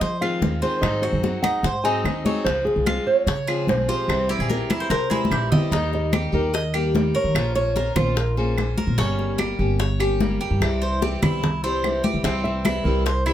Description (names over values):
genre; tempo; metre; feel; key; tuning
latin, Cuban son and guajira; 147 BPM; 4/4; straight; unclear; A4 = 440 Hz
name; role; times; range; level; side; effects
nylon-string guitar; melody; 0.0-8.8, 12.2-13.3 s; G4 to Ab5; -25 LUFS; right 2 dB; none
picked steel-string acoustic guitar; accompaniment; 0.0-13.3 s; C3 to C5; -28 LUFS; left 2 dB; none
Cuban tres; arpeggios; 0.0-13.3 s; C4 to Eb5; -27 LUFS; right 1 dB; none
upright bass; bass; 0.0-13.3 s; G1 to F3; -24 LUFS; equal; none
bongos; percussion; 0.0-13.3 s; none; -31 LUFS; left 5 dB; none
congas; percussion; 0.0-13.3 s; none; -25 LUFS; left 1 dB; none
claves; percussion; 0.2-13.3 s; none; -31 LUFS; right 5 dB; none
koto; second line; 4.3-7.4 s; E4 to C5; -28 LUFS; left 1 dB; none
room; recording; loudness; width
light reverb; none; -19 LUFS; side -11 dB against mid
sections
0.0-5.7 A section; 5.7-13.3 B section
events
drum fill 5.1-5.7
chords
0.0 Fm7; 0.8 Ab7; 2.5 Dbmaj7; 4.1 C; 5.7 Eb; 7.4 Bbmadd9; 9.0 Gdim; 10.6 C